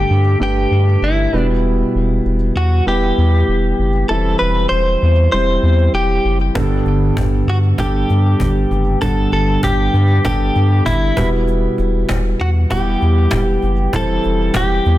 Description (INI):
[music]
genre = piano-driven pop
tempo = 98 BPM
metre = 4/4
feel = straight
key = G major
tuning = A4 = 440 Hz
[part]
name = direct-recorded clean electric guitar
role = melody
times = 0.0-15.0 s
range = E4 to C5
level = -19 LUFS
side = equal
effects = ping-pong delay
[part]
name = warm concert grand piano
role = accompaniment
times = 0.0-15.0 s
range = G2 to F#5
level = -19 LUFS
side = right 1 dB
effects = none
[part]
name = round analog bass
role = bass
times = 0.0-15.0 s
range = E1 to G2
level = -16 LUFS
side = equal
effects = none
[part]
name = cajon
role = drums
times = 6.6-14.9 s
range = none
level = -23 LUFS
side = equal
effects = none
[sound]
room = light reverb, studio ambience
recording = dense, heavily limited modern master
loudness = -13 LUFS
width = side -15 dB against mid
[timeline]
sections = 0.0-15.0 A section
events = none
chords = 0.0 Gadd9; 1.3 Em; 4.1 C/E; 6.6 Gadd9; 11.2 Em; 13.9 C/E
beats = 0.41 1.02 | 1.64 2.25 2.87 3.48 | 4.10 4.71 5.33 5.94 | 6.56 7.17 7.79 8.40 | 9.02 9.63 10.25 10.86 | 11.47 12.09 12.70 13.32 | 13.93 14.55